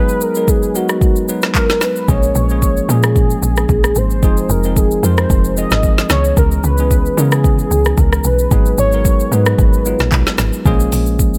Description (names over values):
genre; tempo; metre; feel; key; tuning
amapiano; 112 BPM; 4/4; swing 55% on 16ths; unclear; A4 = 441 Hz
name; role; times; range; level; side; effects
warm velvety synth lead; melody; 0.0-10.4 s; Gb4 to Eb5; -22 LUFS; equal; chorus, digital delay
bell-like tine electric piano; accompaniment; 0.0-11.4 s; Fb3 to Cb5; -22 LUFS; equal; none
afro-pop drum kit; drums; 0.1-11.4 s; handclaps, hi-hat, kick drum, rim click, shaker, snare drum; -18 LUFS; equal; none
woody log drum bass; bass; 2.1-11.4 s; F1 to Db3; -18 LUFS; equal; none
room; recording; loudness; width
little or no reverb; none; -14 LUFS; mono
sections
0.0-10.7 A section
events
none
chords
0.0 Abm7; 2.1 Bbm7; 4.2 Fm7; 6.1 Dbm7; 8.5 Abm7; 10.7 Bbm7